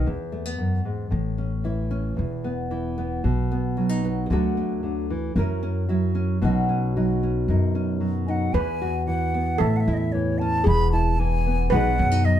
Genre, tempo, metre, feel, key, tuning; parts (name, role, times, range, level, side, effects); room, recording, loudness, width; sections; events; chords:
acoustic folk duo or small band; 113 BPM; 4/4; straight; E major; A4 = 440 Hz
nylon-string guitar; accompaniment; 0.0-12.4 s; E2 to A#4; -24 LUFS; equal
upright bass; bass; 0.0-12.4 s; E1 to F#2; -25 LUFS; equal
wooden flute; melody; 8.3-12.4 s; C#5 to B5; -26 LUFS; right 1 dB
steel pan; second line; 8.5-12.4 s; G#4 to B4; -28 LUFS; right 3 dB
wet studio reverb, RT60 0.5 s; heard from further back in the room; -21 LUFS; side -10 dB against mid
0.1-8.5 A section; 8.5-12.4 B section
0.1 Eadd9; 1.1 A; 2.2 E5; 3.2 B; 4.3 D; 5.4 F#7; 6.4 Badd9; 8.5 Eadd9; 9.6 A; 10.7 E; 11.7 B6